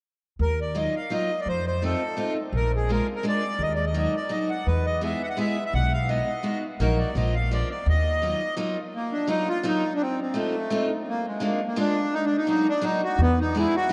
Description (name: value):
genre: musette waltz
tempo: 169 BPM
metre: 3/4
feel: straight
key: Eb harmonic minor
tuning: A4 = 441 Hz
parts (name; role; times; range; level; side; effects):
- accordion; melody; 0.4-13.9 s; Ab3 to Gb5; -28 LUFS; equal; none
- upright bass; bass; 0.4-8.3, 13.2-13.6 s; Bb1 to F2; -27 LUFS; equal; none
- picked steel-string acoustic guitar; accompaniment; 0.7-13.9 s; F3 to G#4; -31 LUFS; equal; none
room: wet cathedral reverb, RT60 7.6 s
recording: in a vast, echoing space, nothing above 10.6 kHz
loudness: -25 LUFS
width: mono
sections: 0.4-8.9 A section; 8.9-13.9 A section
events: none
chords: 0.4 Ebmadd9; 1.5 F7; 2.5 Bb7; 3.6 Ebm; 4.7 E; 5.7 B6; 6.8 Ebm/Bb; 7.1 Bb; 7.9 Ebmadd9; 10.0 F7; 11.1 Bb7; 12.1 Ebm; 13.2 E